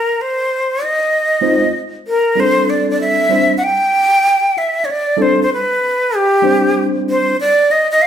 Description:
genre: hip hop.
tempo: 96 BPM.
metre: 4/4.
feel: swing 66% on 16ths.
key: unclear.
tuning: A4 = 440 Hz.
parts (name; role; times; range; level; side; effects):
breathy jazz flute; melody; 0.0-8.1 s; G4 to G5; -13 LUFS; equal; none.
mellow tine electric piano; accompaniment; 1.4-7.3 s; G3 to C5; -16 LUFS; equal; medium stereo tremolo.
room: wet large studio reverb, RT60 1.1 s.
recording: band playing live in one room.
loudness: -12 LUFS.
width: side -9 dB against mid.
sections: 0.0-2.4 A section; 2.4-8.1 A section.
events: none.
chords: 0.0 Bb9sus4; 2.4 D9sus4; 7.4 N.C..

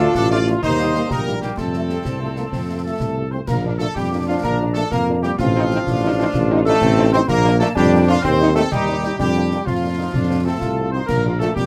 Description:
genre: military-style march for wind band.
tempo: 126 BPM (dotted quarters).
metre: 6/8.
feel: straight.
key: Bb major.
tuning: A4 = 442 Hz.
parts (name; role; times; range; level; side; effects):
clear trumpet section; melody; 0.0-11.7 s; F4 to D5; -30 LUFS; equal; none.
bright large flute ensemble; second line; 0.0-11.6 s; F5 to D6; -33 LUFS; equal; none.
clear euphonium; second line; 0.0-11.7 s; F3 to F4; -26 LUFS; equal; none.
warm woodwind section; second line; 0.0-11.7 s; Bb3 to C5; -30 LUFS; equal; none.
warm French horn section; accompaniment; 0.0-11.5 s; C3 to F4; -28 LUFS; equal; none.
warm trombone section; sustained chords; 0.0-11.7 s; F3 to F4; -28 LUFS; equal; none.
mellow tuba; bass; 0.0-11.7 s; A1 to F2; -22 LUFS; equal; none.
concert snare drum, concert bass drum and clash cymbals; drums; 0.1-11.7 s; none; -29 LUFS; equal; none.
room: light reverb.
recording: close, detailed microphones.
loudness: -19 LUFS.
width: mono.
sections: 0.0-3.5 A section; 3.5-11.7 B section.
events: none.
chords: 0.0 Dm; 0.6 Eb; 1.6 F; 3.5 Bb; 5.4 F7/A; 7.3 Bb; 8.2 Cm/Eb; 9.2 Bb/F; 10.1 F; 11.1 Bb.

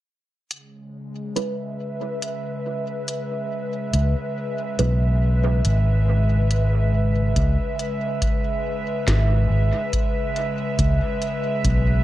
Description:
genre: ambient dub.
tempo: 70 BPM.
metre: 4/4.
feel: straight.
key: C# minor.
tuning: A4 = 440 Hz.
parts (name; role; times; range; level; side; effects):
airy breathy pad; sustained chords; 0.5-12.0 s; C#3 to E5; -26 LUFS; equal; chorus.
organic electronic drum kit; drums; 0.5-11.8 s; hi-hat, snare drum; -30 LUFS; left 1 dB; dub echo.
filtered dub chord stab; stabs; 1.4-5.0 s; G#3 to B4; -30 LUFS; right 3 dB; phaser, wide subtle chorus, dub echo.
fingered electric bass; bass; 3.9-12.0 s; G#1 to C#2; -18 LUFS; equal; none.
electronic kick drum; drums; 7.4-11.8 s; none; -25 LUFS; equal; none.
room: little or no reverb.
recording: dark, warm production.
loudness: -20 LUFS.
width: side -14 dB against mid.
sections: 0.5-7.4 A section; 7.4-12.0 B section.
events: none.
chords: 0.5 C#m7.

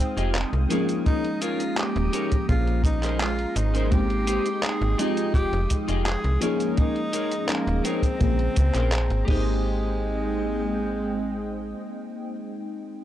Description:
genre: vaporwave.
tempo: 84 BPM.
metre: 4/4.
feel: straight.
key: Ab major.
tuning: A4 = 440 Hz.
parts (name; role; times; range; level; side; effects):
breathy tenor saxophone; melody; 0.0-12.5 s; Ab3 to Ab4; -31 LUFS; equal; tape echo.
FM electric piano with soft pad layer; accompaniment; 0.0-13.0 s; Db3 to G5; -29 LUFS; left 1 dB; tremolo, lush chorus.
soft string machine; sustained chords; 0.0-12.5 s; Ab3 to Eb6; -34 LUFS; equal; phaser, ensemble chorus.
clean electric guitar; riff; 0.0-12.5 s; Db4 to Eb5; -32 LUFS; left 2 dB; analog chorus, vintage 12-bit sampler grit, analog delay.
slap-like FM bass; bass; 0.2-11.7 s; Eb1 to Db2; -25 LUFS; equal; none.
detuned 8-bit digital drum machine; drums; 0.2-9.4 s; cabasa, crash cymbal, handclaps, hi-hat; -31 LUFS; equal; none.
kick drum; drums; 1.1-9.4 s; none; -22 LUFS; equal; none.
room: studio reverb.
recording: dry, gritty hardware recording, cassette tape.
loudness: -22 LUFS.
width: side -12 dB against mid.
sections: 0.0-9.6 A section; 9.6-12.5 B section.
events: none.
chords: 0.0 Fm9; 0.7 Eb7sus4; 2.5 Bbm9; 3.9 Abmaj7; 5.0 Fm9; 6.4 Eb7sus4; 8.2 Bbm9; 9.3 Abmaj7.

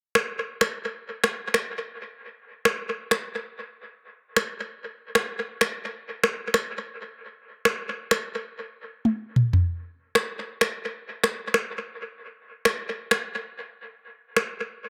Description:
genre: afrobeats.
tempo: 96 BPM.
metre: 4/4.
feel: swing 55% on 16ths.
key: none.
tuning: none.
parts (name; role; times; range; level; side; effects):
afro-pop drum kit; drums; 0.2-14.5 s; finger snaps, rim click, toms; -26 LUFS; equal; dub echo.
room: moderate spring reverb, RT60 1.2 s.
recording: echo-heavy mix.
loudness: -27 LUFS.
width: mono.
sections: 0.0-14.9 A section.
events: drum fill 9.1-9.7.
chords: none.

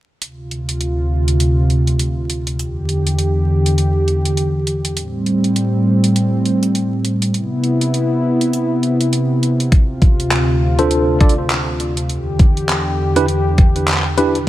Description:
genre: glitch hop.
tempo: 101 BPM.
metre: 4/4.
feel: swing 59% on 16ths.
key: E phrygian.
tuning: A4 = 440 Hz.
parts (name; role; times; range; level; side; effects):
warm analog pad; sustained chords; 0.2-14.5 s; D2 to G4; -16 LUFS; equal; chorus, sidechain pumping.
pop drum kit; drums; 0.2-14.4 s; handclaps, hi-hat; -22 LUFS; equal; overdrive.
electronic kick drum; drums; 9.7-13.7 s; none; -10 LUFS; equal; overdrive.
tine electric piano; stabs; 10.8-14.4 s; D4 to D5; -17 LUFS; right 1 dB; overdrive, medium stereo tremolo, sidechain pumping, digital delay.
room: light reverb, digital ambience.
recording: vinyl crackle.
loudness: -14 LUFS.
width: side -14 dB against mid.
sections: 0.2-14.5 A section.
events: none.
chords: 0.2 Dm7; 2.6 Em7; 5.0 Am7; 7.3 Cmaj7; 9.7 Dm7; 12.1 Em7.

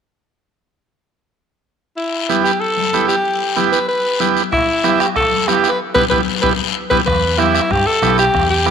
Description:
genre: latin, cumbia.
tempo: 189 BPM.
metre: 4/4.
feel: straight.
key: E minor.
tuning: A4 = 443 Hz.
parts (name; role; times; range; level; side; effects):
bright alto saxophone; melody; 2.0-8.7 s; E4 to B4; -16 LUFS; left 1 dB; none.
guiro; percussion; 2.0-8.7 s; none; -24 LUFS; left 13 dB; none.
combo organ; accompaniment; 2.3-8.7 s; B3 to G4; -18 LUFS; right 9 dB; none.
congas; percussion; 2.3-8.7 s; none; -25 LUFS; left 15 dB; none.
bombo; percussion; 4.5-8.7 s; none; -23 LUFS; right 1 dB; none.
fingered electric bass; bass; 7.1-8.7 s; B1 to G2; -21 LUFS; left 1 dB; none.
room: moderate echo chamber reverb, RT60 2.6 s.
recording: 1960s-style stereo with parts hard left and right.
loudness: -13 LUFS.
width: side -7 dB against mid.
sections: 2.0-7.1 A section; 7.1-8.7 B section.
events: band accent 5.8-7.1; drum fill 6.4-7.1.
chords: 2.0 Em.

